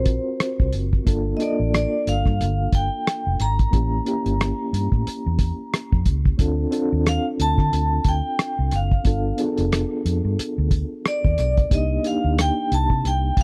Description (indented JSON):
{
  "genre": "lush 1970s-style soul",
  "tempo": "90 BPM",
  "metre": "4/4",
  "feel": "swing 58% on 16ths",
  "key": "unclear",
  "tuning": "A4 = 445 Hz",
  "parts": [
    { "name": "vibraphone with medium hard mallets", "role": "melody", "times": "0.0-13.4 s", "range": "C5 to Bb5", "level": "-28 LUFS", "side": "equal", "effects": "none" },
    { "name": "reed electric piano", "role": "accompaniment", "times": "0.0-13.4 s", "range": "Bb3 to A#4", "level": "-29 LUFS", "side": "equal", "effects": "fast tremolo" },
    { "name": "vintage muted fingered electric bass", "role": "bass", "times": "0.0-13.4 s", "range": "F1 to D3", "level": "-25 LUFS", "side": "equal", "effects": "none" },
    { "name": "cloth-damped thuddy drum kit", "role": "drums", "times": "0.1-13.4 s", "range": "hi-hat, kick drum, rim click", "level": "-23 LUFS", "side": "equal", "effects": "none" }
  ],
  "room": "small room ambience",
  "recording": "dry, close 1970s-style studio recording",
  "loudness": "-22 LUFS",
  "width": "mono",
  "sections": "0.0-13.4 A section",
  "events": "none",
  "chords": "0.0 D7#9b13 (rootless); 1.1 Gm9; 3.7 A7b9; 6.4 Dm7; 9.1 G7; 11.7 Cm9"
}